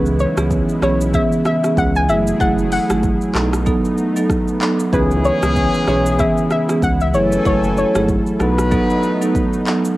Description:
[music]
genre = afrobeats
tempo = 95 BPM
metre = 4/4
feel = swing 58% on 16ths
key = C# minor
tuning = A4 = 436 Hz
[part]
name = soft round pluck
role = melody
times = 0.0-8.7 s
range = B4 to G#5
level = -20 LUFS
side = left 2 dB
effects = chorus, cassette tape
[part]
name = marimba with medium mallets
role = accompaniment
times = 0.0-9.8 s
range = E3 to A4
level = -18 LUFS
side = right 2 dB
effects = cassette tape
[part]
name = warm analog pad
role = sustained chords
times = 0.0-10.0 s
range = C#3 to G#5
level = -28 LUFS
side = left 1 dB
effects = chorus, sidechain pumping, cassette tape
[part]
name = round analog bass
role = bass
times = 0.0-8.8 s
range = F#1 to C#2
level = -21 LUFS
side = equal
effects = none
[part]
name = afro-pop drum kit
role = drums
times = 0.1-10.0 s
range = handclaps, hi-hat, kick drum, rim click, shaker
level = -22 LUFS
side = equal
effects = cassette tape
[part]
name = warm horn section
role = second line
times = 4.9-9.6 s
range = E3 to B4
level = -22 LUFS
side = left 2 dB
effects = cassette tape
[sound]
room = light reverb, digital ambience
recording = home recording on cassette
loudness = -14 LUFS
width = side -17 dB against mid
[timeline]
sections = 0.0-10.0 A section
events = none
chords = 0.0 C#m7; 2.1 F#m9; 3.4 B7; 4.9 C#m7; 7.1 F#m9; 8.4 B7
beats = 0.51 1.14 1.77 | 2.40 3.03 3.67 4.30 | 4.93 5.56 6.19 6.82 | 7.46 8.09 8.72 9.35

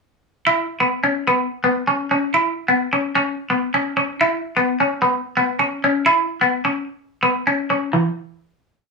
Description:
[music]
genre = highlife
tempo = 128 BPM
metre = 4/4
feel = straight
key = unclear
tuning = A4 = 444 Hz
[part]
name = semi-hollow electric guitar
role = solo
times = 0.5-8.1 s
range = E3 to E4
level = -17 LUFS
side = equal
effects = phaser
[sound]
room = wet studio reverb, RT60 0.6 s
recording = band playing live in one room, studio ambience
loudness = -17 LUFS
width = side -3 dB against mid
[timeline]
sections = 0.5-7.9 groove; 7.9-8.9 final note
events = none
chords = none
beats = | 0.47 0.94 1.40 1.87 | 2.34 2.80 3.27 3.74 | 4.20 4.67 5.14 5.61 | 6.07 6.54 7.01 7.48 | 7.94

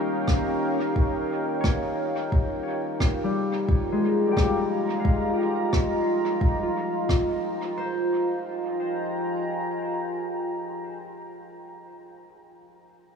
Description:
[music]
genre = ambient dub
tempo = 88 BPM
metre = 4/4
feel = swing 57% on 16ths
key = F minor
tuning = A4 = 442 Hz
[part]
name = deep dark ambient pad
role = sustained chords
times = 0.0-11.3 s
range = Eb4 to Bb5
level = -27 LUFS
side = right 1 dB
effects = chorus, built-in reverb
[part]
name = concert harp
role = arpeggios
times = 0.0-10.9 s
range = G3 to G5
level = -29 LUFS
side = left 4 dB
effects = low-pass filter, tape echo
[part]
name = electronic kick drum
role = drums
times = 0.3-7.2 s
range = none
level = -23 LUFS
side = equal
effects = none
[part]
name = rim click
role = drums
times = 0.3-7.2 s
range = none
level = -35 LUFS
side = right 1 dB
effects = dub echo
[sound]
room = moderate huge ambient reverb, RT60 7.2 s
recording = none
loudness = -23 LUFS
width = side -6 dB against mid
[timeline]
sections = 0.0-7.8 A section; 7.8-10.5 B section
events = filter sweep on harp 0.0-7.8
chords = 0.0 Eb9; 2.3 Fm11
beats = 0.28 0.96 1.64 | 2.32 3.00 3.69 4.37 | 5.05 5.73 6.41 7.09 | 7.78 8.46 9.14 9.82

